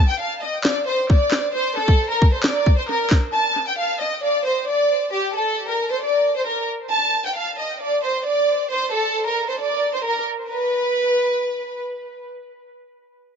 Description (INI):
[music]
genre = hip hop, trap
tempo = 134 BPM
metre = 4/4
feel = half-time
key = unclear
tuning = A4 = 437 Hz
[part]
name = warm studio violin section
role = melody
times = 0.0-11.8 s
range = G4 to A5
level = -20 LUFS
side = equal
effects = analog delay
[part]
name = trap drum kit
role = drums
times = 0.6-3.2 s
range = handclaps, kick drum, snare drum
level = -17 LUFS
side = equal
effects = vintage 12-bit sampler grit, analog delay
[sound]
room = light reverb, digital ambience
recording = echo-heavy mix, nothing above 7.7 kHz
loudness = -18 LUFS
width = side -7 dB against mid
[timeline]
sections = 0.0-10.5 A section; 10.5-13.4 B section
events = break 0.0-3.3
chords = none